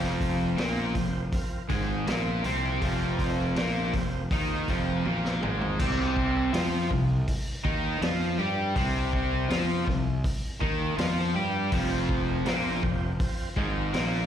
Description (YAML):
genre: blues rock power trio and southern rock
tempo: 81 BPM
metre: 4/4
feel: straight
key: C minor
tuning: A4 = 437 Hz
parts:
  - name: overdriven tonewheel organ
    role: sustained chords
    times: 0.0-5.7, 11.7-14.2 s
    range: F3 to D5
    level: -38 LUFS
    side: right 4 dB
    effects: slow rotary speaker
  - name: cranked stack guitar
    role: riff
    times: 0.0-14.3 s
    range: F2 to G4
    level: -28 LUFS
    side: equal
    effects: overdrive, slapback echo
  - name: fuzz fingered electric bass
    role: bass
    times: 0.0-14.3 s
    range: F1 to G2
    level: -30 LUFS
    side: equal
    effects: overdrive
  - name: vintage drum kit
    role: drums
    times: 0.0-14.1 s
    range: crash cymbal, hi-hat, kick drum, snare drum, toms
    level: -31 LUFS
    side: equal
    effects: none
room: light reverb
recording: live gig heard through the venue's PA, recital hall reverb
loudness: -25 LUFS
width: side -9 dB against mid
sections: 0.0-5.8 A section; 5.8-14.3 A section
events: drum fill 5.1-5.8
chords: 0.0 F5; 5.8 Cm; 11.7 F5